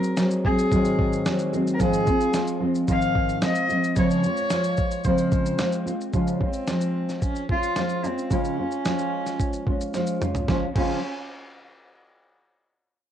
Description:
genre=acoustic pop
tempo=111 BPM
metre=4/4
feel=straight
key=Db major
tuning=A4 = 444 Hz
part: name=warm cello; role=melody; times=0.0-11.0 s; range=C4 to F5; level=-27 LUFS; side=left 1 dB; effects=cassette tape
part: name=nylon-string guitar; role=accompaniment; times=0.0-11.0 s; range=Ab2 to Ab4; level=-24 LUFS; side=equal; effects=double-tracked left and right, cassette tape
part: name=dusty soul sampler-style drum kit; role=drums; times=0.0-10.9 s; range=crash cymbal, kick drum, shaker, snare drum, toms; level=-27 LUFS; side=equal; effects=cassette tape
room=light reverb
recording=home recording on cassette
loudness=-21 LUFS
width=side -10 dB against mid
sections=0.0-6.1 A section; 6.1-10.5 B section; 10.5-12.7 C section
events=drum fill 9.9-10.5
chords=0.0 Ab7; 1.8 Fm7/Ab; 4.0 Dbmaj7; 6.1 Db

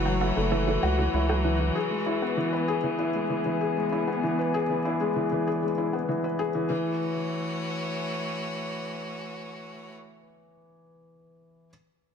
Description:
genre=piano and strings electronica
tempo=97 BPM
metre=4/4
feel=straight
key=F# minor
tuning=A4 = 441 Hz
part: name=clear string quartet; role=sustained chords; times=0.0-9.9 s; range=E3 to D5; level=-32 LUFS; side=left 1 dB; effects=low-pass filter
part: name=felt-muted upright piano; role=riff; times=0.0-11.7 s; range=E3 to B4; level=-27 LUFS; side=left 2 dB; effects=digital delay
part: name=round analog bass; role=bass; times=0.0-1.7 s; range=F#1 to C#2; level=-26 LUFS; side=right 1 dB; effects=none
part: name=wide unison pluck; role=arpeggios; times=0.2-1.5 s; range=E4 to A4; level=-35 LUFS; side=right 5 dB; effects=none
room=moderate echo chamber reverb, RT60 1.6 s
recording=none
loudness=-25 LUFS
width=side -7 dB against mid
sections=0.0-6.7 A section; 6.7-9.2 B section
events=filter sweep on string quartet 0.0-6.7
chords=0.0 F#m7; 1.8 E7; 6.7 F#m7

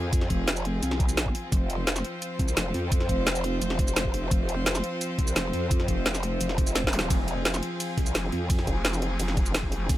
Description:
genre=dark technical drum and bass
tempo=172 BPM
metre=4/4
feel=straight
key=F minor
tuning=A4 = 439 Hz
part: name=rich chamber string section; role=sustained chords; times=0.0-10.0 s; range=F3 to C5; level=-32 LUFS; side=left 1 dB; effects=sidechain pumping
part: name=growl bass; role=bass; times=0.0-10.0 s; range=F1 to F2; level=-29 LUFS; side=equal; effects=chorus, overdrive, sidechain pumping
part: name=drum and bass drum kit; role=drums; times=0.1-10.0 s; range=hi-hat, ride cymbal, shaker, snare drum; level=-28 LUFS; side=equal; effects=overdrive
part: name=electronic kick drum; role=drums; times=0.1-10.0 s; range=none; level=-26 LUFS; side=equal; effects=overdrive
part: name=zap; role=sound effects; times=6.9-7.0 s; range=none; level=-35 LUFS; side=equal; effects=none
part: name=vowel-sweep wobble bass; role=bass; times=8.2-9.9 s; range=F1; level=-29 LUFS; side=equal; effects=chorus
room=little or no reverb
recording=none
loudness=-24 LUFS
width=side -14 dB against mid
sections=0.0-10.0 A section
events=drum fill 6.8-7.1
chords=0.0 Fm

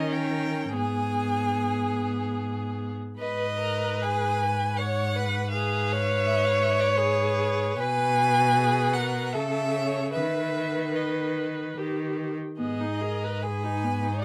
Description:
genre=classical, slow romantic movement for string quartet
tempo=69-84 BPM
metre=3/4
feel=rubato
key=G# minor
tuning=A4 = 440 Hz
part: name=rich violin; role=melody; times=0.0-14.2 s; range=B4 to G#5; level=-31 LUFS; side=equal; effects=none
part: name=rich violin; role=second line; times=0.0-14.2 s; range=G#4 to D#5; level=-33 LUFS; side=equal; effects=none
part: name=rich viola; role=accompaniment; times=0.0-14.2 s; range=B3 to C#5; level=-34 LUFS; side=equal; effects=none
part: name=rich cello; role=bass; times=0.0-14.2 s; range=G#2 to D#3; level=-32 LUFS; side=equal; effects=none
room=light reverb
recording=close, detailed microphones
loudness=-26 LUFS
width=mono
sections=0.0-3.2 A section; 3.2-14.2 B section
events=none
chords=0.0 D#7; 0.7 G#m; 5.5 E6b9/G# (rootless); 7.8 G#m/B; 9.3 A/C#; 10.1 Badd11/D#; 11.8 D#; 12.6 G#m

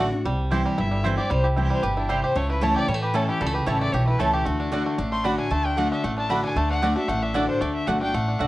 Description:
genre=bluegrass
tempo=228 BPM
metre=4/4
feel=straight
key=D mixolydian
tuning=A4 = 440 Hz
part: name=bluegrass banjo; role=melody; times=0.0-8.5 s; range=G3 to G4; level=-29 LUFS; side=right 1 dB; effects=none
part: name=clear fiddle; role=melody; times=0.0-8.5 s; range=D4 to C6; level=-28 LUFS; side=left 1 dB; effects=none
part: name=picked steel-string acoustic guitar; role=accompaniment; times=0.0-8.5 s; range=G2 to F#4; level=-26 LUFS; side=left 1 dB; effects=none
part: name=mandolin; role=stabs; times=0.0-8.5 s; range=A3 to A5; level=-27 LUFS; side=right 2 dB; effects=none
part: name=upright bass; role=bass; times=0.0-8.5 s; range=G1 to A2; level=-27 LUFS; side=equal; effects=none
room=moderate studio reverb, RT60 0.7 s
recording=worn, warbling old tape, cassette tape, warbly pitch drift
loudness=-21 LUFS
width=side -17 dB against mid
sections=0.3-8.5 A section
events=none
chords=0.3 C; 2.4 A/C#; 4.5 D

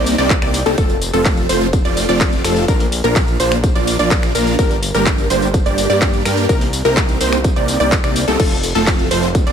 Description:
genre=EDM, festival progressive house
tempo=126 BPM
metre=4/4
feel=straight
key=unclear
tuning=A4 = 440 Hz
part: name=wide unison pluck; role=arpeggios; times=0.0-9.5 s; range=A4 to D5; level=-20 LUFS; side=moving between left 5 dB and right 6 dB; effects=auto-pan, sidechain pumping, tape echo
part: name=big supersaw lead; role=riff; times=0.0-9.5 s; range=F3 to D5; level=-19 LUFS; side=equal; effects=phaser, sidechain pumping, tape echo
part: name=fat analog bass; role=bass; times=0.0-9.5 s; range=F1 to G2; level=-22 LUFS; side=equal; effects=tube saturation, sidechain pumping
part: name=big-room dance drum kit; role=drums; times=0.1-9.5 s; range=crash cymbal, finger snaps, handclaps, hi-hat, ride cymbal, tambourine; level=-22 LUFS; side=left 1 dB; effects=overdrive
part: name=electronic kick drum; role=drums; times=0.3-9.4 s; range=none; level=-16 LUFS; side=equal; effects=none
room=light reverb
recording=none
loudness=-13 LUFS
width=side -8 dB against mid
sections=0.0-9.5 A section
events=none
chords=0.0 Cm7; 0.8 F; 2.7 Bb; 4.6 Gm; 6.5 Cm7; 8.4 F

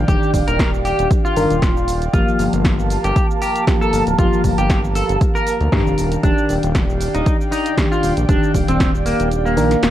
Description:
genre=deep house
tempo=117 BPM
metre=4/4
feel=swing 54% on 16ths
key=unclear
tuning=A4 = 440 Hz
part: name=warbly tape-like pad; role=sustained chords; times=0.0-9.9 s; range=Bb4 to A5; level=-26 LUFS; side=right 4 dB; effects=chorus, built-in reverb, phaser, sidechain pumping
part: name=mellow FM electric piano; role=stabs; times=0.0-9.7 s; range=Eb3 to Bb4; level=-21 LUFS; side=left 1 dB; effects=chorus, sidechain pumping, tape echo
part: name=round analog bass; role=bass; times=0.0-9.9 s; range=D1 to G2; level=-21 LUFS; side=equal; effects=sidechain pumping
part: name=clean electric guitar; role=melody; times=0.1-9.9 s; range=Bb3 to Bb4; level=-22 LUFS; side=left 1 dB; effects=lush chorus, analog delay
part: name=electronic kick drum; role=drums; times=0.1-8.9 s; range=none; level=-18 LUFS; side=equal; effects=overdrive
part: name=punchy analog drum machine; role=drums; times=0.1-9.9 s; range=hi-hat, shaker, snare drum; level=-26 LUFS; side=equal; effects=none
room=digital ambience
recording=cassette tape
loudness=-14 LUFS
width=side -12 dB against mid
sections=0.0-9.9 A section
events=kick drops out 9.3-9.9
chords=0.0 Ebmaj7; 2.1 Gm7; 6.0 Ebmaj7

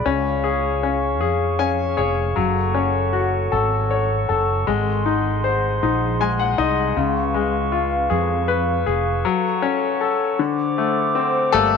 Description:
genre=six-eight pop ballad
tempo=52 BPM (dotted quarters)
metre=6/8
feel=straight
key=F# minor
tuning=A4 = 440 Hz
part: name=bright concert grand piano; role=accompaniment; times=0.0-11.8 s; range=C#3 to G#5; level=-20 LUFS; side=left 9 dB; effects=none
part: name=glass harmonica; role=sustained chords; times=0.0-11.5 s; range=G#4 to D6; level=-24 LUFS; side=right 4 dB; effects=none
part: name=fretless electric bass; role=bass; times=0.0-11.8 s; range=E#1 to E#2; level=-24 LUFS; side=right 2 dB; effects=ensemble chorus
room=moderate plate reverb, RT60 2.9 s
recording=none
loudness=-18 LUFS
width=side -6 dB against mid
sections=0.0-11.5 A section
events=grand piano fill 1.2-2.4, 5.8-7.0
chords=0.1 C#; 2.4 F#m; 4.7 G#7; 7.0 C#7; 9.2 F#m; 10.4 D7

